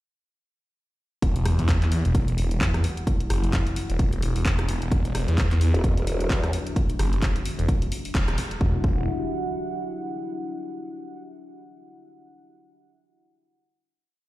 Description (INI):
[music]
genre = bass house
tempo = 130 BPM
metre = 4/4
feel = swing 58% on 16ths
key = E minor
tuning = A4 = 437 Hz
[part]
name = deep dark ambient pad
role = sustained chords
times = 2.4-8.8 s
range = D4 to F#5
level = -33 LUFS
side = left 1 dB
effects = chorus, built-in reverb, sidechain pumping
[part]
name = phased detuned saw bass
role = bass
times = 1.2-9.1 s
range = E1 to E2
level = -23 LUFS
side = equal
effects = phaser, overdrive, sidechain pumping
[part]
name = electronic kick drum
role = drums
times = 1.2-8.9 s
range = none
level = -23 LUFS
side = equal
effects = none
[part]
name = house drum kit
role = drums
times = 1.2-8.6 s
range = handclaps, hi-hat, rim click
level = -32 LUFS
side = equal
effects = none
[part]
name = growl bass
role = bass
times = 5.7-6.5 s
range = E1 to E2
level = -24 LUFS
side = equal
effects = chorus, overdrive, sidechain pumping
[sound]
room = little or no reverb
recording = played on a big sound system in a bare room, large studio reverb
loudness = -22 LUFS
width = side -17 dB against mid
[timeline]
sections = 1.2-8.6 drop; 8.6-10.5 final chord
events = drop 1.2-8.6; band accent 8.1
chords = 1.2 Emadd9; 4.9 Dadd9/E; 8.6 Emadd9